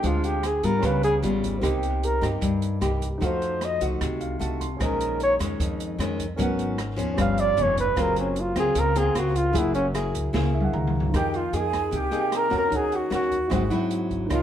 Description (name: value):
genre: bossa nova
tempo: 152 BPM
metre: 4/4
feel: straight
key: F minor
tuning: A4 = 440 Hz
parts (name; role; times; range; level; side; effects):
- mellow flugelhorn; melody; 0.0-14.4 s; Db4 to F5; -25 LUFS; equal; none
- nylon-string guitar; accompaniment; 0.0-14.4 s; F2 to Ab4; -27 LUFS; left 2 dB; none
- warm grand piano; accompaniment; 0.0-14.4 s; C4 to G6; -34 LUFS; right 2 dB; none
- upright bass; bass; 0.0-14.4 s; F1 to Ab2; -29 LUFS; equal; none
- open jazz drum kit; drums; 0.0-14.4 s; hi-hat, kick drum, rim click, snare drum, toms; -31 LUFS; equal; none
- breathy jazz flute; second line; 11.1-14.4 s; F5 to Bb5; -32 LUFS; right 6 dB; none
room: moderate plate reverb, RT60 1.2 s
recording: heard from further back in the room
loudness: -22 LUFS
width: side -10 dB against mid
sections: 0.0-11.1 A section; 11.1-14.4 B section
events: flugelhorn solo 0.0-11.1; grand piano fill 4.0-4.8, 10.3-11.1; drum fill 10.3-11.1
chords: 0.0 Dm7b5; 0.8 Db7#11; 1.6 Cm7; 3.2 F7b9; 4.8 Bbm11; 6.4 Abm11; 7.2 G7#11; 8.0 Gbmaj9#11; 9.6 Gb9; 11.1 Fm11; 12.7 Ebm7; 13.5 Abaug7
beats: | 0.04 0.44 0.84 1.23 | 1.63 2.03 2.42 2.82 | 3.22 3.62 4.01 4.41 | 4.80 5.20 5.60 5.99 | 6.39 6.79 7.18 7.58 | 7.97 8.37 8.76 9.16 | 9.55 9.95 10.34 10.74 | 11.13 11.53 11.93 12.32 | 12.72 13.11 13.51 13.90 | 14.30